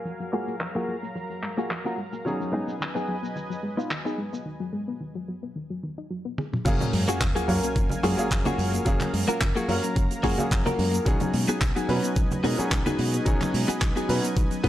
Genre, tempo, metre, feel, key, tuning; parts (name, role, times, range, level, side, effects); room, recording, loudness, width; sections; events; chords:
nu-disco, nu disco; 109 BPM; 4/4; swing 54% on 16ths; F# major; A4 = 439 Hz
dark grand piano; accompaniment; 0.0-14.7 s; F#3 to E#5; -30 LUFS; equal; analog delay
lush unison pad; sustained chords; 0.0-14.7 s; F#3 to A#5; -36 LUFS; equal; chorus, sidechain pumping
soft round pluck; arpeggios; 0.1-14.7 s; D#3 to G#4; -33 LUFS; left 2 dB; chorus, sidechain pumping, analog delay
damped 70s drum kit; drums; 0.1-14.7 s; crash cymbal, handclaps, hi-hat, shaker, toms; -32 LUFS; right 1 dB; low-pass filter on toms, studio reverb, low-pass filter on hats, low-pass filter on cymbals, low-pass filter on snare, low-pass filter on perc, low-pass filter on room
direct-recorded clean electric guitar; riff; 0.3-14.7 s; A#3 to B4; -29 LUFS; left 1 dB; wide subtle chorus, low-pass filter, analog delay
modern bright fingered electric bass; bass; 6.7-14.7 s; F#1 to B2; -28 LUFS; equal; sidechain pumping
electronic kick drum; drums; 6.7-14.7 s; -25 LUFS; equal; overdrive, studio reverb
sub drop; sound effects; 6.7-8.9 s; -33 LUFS; equal
congas; percussion; 6.8-14.2 s; -34 LUFS; right 3 dB
light reverb, small room ambience; dry, gritty hardware recording, transformer saturation, low-pass filter; -24 LUFS; side -13 dB against mid
0.0-6.7 A section; 6.7-14.7 B section
filter sweep on grand piano 0.0-6.7; filter sweep on synth arpeggio sound 0.0-6.7; break 4.5-6.7; drum fill 6.4; drop 6.7-14.7; impact 6.7-8.9
0.0 F#maj9; 2.3 B6; 6.7 F#maj9; 11.1 B6